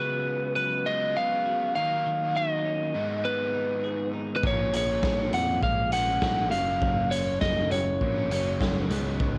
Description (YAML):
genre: indie rock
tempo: 101 BPM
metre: 4/4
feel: straight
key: F# major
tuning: A4 = 439 Hz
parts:
  - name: lightly driven lead guitar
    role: melody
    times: 0.0-8.9 s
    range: B4 to F#5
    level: -29 LUFS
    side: equal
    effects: cassette tape, tape echo
  - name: crunchy overdriven guitar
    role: riff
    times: 0.0-9.4 s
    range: F#2 to E#4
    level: -36 LUFS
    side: equal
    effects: subtle chorus, cassette tape, tape echo
  - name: twelve-string electric guitar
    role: riff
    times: 0.0-9.4 s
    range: G#2 to G#4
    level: -37 LUFS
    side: equal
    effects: cassette tape
  - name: picked electric bass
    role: bass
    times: 4.4-9.4 s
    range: F#1 to E#2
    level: -33 LUFS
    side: equal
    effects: none
  - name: raw garage drum kit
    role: drums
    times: 4.4-9.3 s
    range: hi-hat, kick drum, snare drum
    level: -32 LUFS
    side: equal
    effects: none
room: light reverb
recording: home recording on cassette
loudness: -27 LUFS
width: mono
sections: 0.0-9.4 A section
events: none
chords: 0.0 C#7sus4; 1.8 D#m7; 3.0 G#m; 4.4 A#m7; 6.5 F#maj7